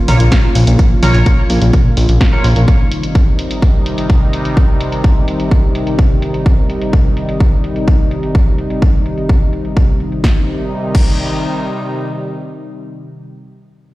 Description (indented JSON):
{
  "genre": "melodic techno",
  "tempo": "127 BPM",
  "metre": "4/4",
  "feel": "straight",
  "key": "C phrygian",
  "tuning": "A4 = 438 Hz",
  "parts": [
    { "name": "sweeping resonant pad", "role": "sustained chords", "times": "0.0-13.3 s", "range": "C3 to F4", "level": "-19 LUFS", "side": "equal", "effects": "chorus, sidechain pumping" },
    { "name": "sync-sweep polysynth", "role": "stabs", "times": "0.1-2.5 s", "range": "Bb3 to Db5", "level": "-21 LUFS", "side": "right 1 dB", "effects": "wide subtle chorus, sidechain pumping, tape echo" },
    { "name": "fat analog bass", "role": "bass", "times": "0.1-2.7 s", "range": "Bb1", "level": "-10 LUFS", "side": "equal", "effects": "sidechain pumping" },
    { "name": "punchy analog drum machine", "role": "drums", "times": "0.1-11.1 s", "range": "crash cymbal, hi-hat, snare drum, toms", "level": "-21 LUFS", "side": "equal", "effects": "low-pass filter on hats, low-pass filter on cymbals, low-pass filter on toms, low-pass filter on snare, low-pass filter on room" },
    { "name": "electronic kick drum", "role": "drums", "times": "0.3-11.1 s", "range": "none", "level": "-11 LUFS", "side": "equal", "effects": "overdrive" }
  ],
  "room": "digital ambience",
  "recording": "played on a big sound system in a bare room, stone room reverb",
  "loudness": "-11 LUFS",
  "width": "side -18 dB against mid",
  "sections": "0.0-10.2 A section; 10.2-13.9 B section",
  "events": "none",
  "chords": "0.0 Bbm; 2.7 Cm"
}